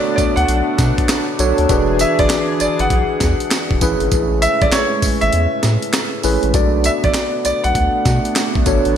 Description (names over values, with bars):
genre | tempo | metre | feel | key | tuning
R&B, new jack swing | 99 BPM | 4/4 | swing 64% on 16ths | B dorian | A4 = 441 Hz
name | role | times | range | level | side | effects
clear concert grand piano | melody | 0.0-8.6 s | C#5 to F#5 | -20 LUFS | right 1 dB | none
tine electric piano | accompaniment | 0.0-9.0 s | C#4 to D5 | -20 LUFS | equal | medium stereo tremolo
chorused pulse-width pad | sustained chords | 0.0-9.0 s | E3 to G#4 | -23 LUFS | equal | none
round analog bass | bass | 0.2-9.0 s | E1 to B2 | -19 LUFS | equal | none
breakbeat sampler-style drum kit | drums | 0.2-9.0 s | handclaps, hi-hat, kick drum, snare drum, tambourine | -19 LUFS | equal | gated reverb
room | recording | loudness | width
moderate lush hall reverb, RT60 2.1 s | bright 1980s-style digital production | -14 LUFS | side -9 dB against mid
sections
0.0-9.0 A section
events
kick muted 5.3-6.5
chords
0.0 Bm9; 1.7 E7; 3.8 Amaj7; 6.5 Bm9